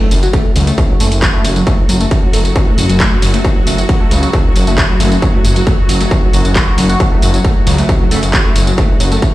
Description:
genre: driving peak-time techno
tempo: 135 BPM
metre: 4/4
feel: straight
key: F# minor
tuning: A4 = 440 Hz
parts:
  - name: overdriven synth lead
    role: riff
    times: 0.0-9.2 s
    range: F#3 to F#4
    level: -19 LUFS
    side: equal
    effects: distortion, chorus, phaser, vintage 12-bit sampler grit, sidechain pumping, digital delay
  - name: swarming drone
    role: drone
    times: 1.4-9.3 s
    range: F#3 to F#4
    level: -21 LUFS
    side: equal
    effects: built-in reverb, sidechain pumping
  - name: detuned saw bass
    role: bass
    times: 0.1-9.2 s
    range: F#1 to C#2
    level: -14 LUFS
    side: equal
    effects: sidechain pumping
  - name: techno drum kit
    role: drums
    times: 0.1-9.3 s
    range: handclaps, hi-hat, tambourine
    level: -19 LUFS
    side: equal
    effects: sidechain pumping on hats, sidechain pumping on perc
  - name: electronic kick drum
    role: drums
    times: 0.3-9.3 s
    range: none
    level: -13 LUFS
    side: equal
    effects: distortion
room: digital ambience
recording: played on a big sound system in a bare room, large studio reverb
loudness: -9 LUFS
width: side -16 dB against mid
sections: 0.0-9.3 A section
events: none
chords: 0.0 F#5

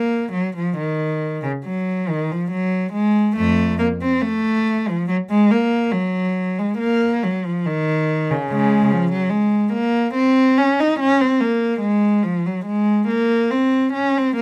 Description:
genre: classical, baroque-style suite movement for unaccompanied cello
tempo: 70 BPM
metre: 4/4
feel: rubato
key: Bb minor, Db major from 8.5 s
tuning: A4 = 440 Hz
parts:
  - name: rich cello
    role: solo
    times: 0.0-14.4 s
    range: F2 to Eb4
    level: -19 LUFS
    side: equal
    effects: none
room: light reverb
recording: close, detailed microphones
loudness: -19 LUFS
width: mono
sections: 0.0-14.4 A section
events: none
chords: none

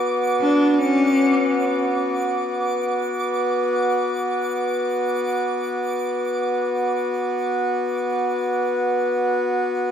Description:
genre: ambient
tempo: free time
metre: none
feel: none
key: B minor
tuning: A4 = 435 Hz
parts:
  - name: hand-pumped harmonium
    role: drone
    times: 0.0-9.9 s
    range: B3 to F#4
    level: -21 LUFS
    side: equal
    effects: none
  - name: twinkling granular texture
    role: texture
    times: 0.0-9.9 s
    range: D6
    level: -32 LUFS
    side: equal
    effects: built-in reverb
  - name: clear cello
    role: melody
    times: 0.4-1.6 s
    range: C#4 to D4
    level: -18 LUFS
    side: left 1 dB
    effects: diffuse ambient delay
room: wet plate reverb, RT60 2.4 s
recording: dreamy mix soaked in reverb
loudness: -19 LUFS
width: side -8 dB against mid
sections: 0.0-9.9 A section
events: fade-out on synth texture 0.0-9.9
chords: 0.0 Bm

